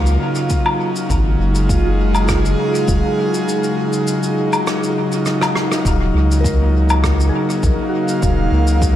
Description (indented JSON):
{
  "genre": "ambient dub",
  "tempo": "101 BPM",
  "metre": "4/4",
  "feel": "swing 53% on 16ths",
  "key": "Eb minor",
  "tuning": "A4 = 445 Hz",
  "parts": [
    { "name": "airy breathy pad", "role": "sustained chords", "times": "0.0-9.0 s", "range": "Db3 to F5", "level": "-18 LUFS", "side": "equal", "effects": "chorus" },
    { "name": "round analog bass", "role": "bass", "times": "0.0-9.0 s", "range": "Eb1 to Db2", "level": "-16 LUFS", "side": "equal", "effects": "tube saturation" },
    { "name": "backwards swelling texture", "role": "texture", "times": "0.0-9.0 s", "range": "Bb3 to F5", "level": "-27 LUFS", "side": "right 2 dB", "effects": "built-in reverb" },
    { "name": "shaker, woodblock and rim click", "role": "drums", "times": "0.1-8.9 s", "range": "none", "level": "-23 LUFS", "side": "left 1 dB", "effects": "dub echo" },
    { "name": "electronic kick drum", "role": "drums", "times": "0.5-8.9 s", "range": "none", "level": "-19 LUFS", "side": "equal", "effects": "none" },
    { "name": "soft synth bell", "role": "arpeggios", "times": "6.4-9.0 s", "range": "Gb4 to Bb4", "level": "-27 LUFS", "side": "left 1 dB", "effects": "chorus, phaser, dub echo" }
  ],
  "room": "light reverb, studio reverb",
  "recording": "none",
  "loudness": "-14 LUFS",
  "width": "side -12 dB against mid",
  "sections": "0.0-9.0 A section",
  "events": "drum fill 5.3-5.8",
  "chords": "0.0 Ebm9"
}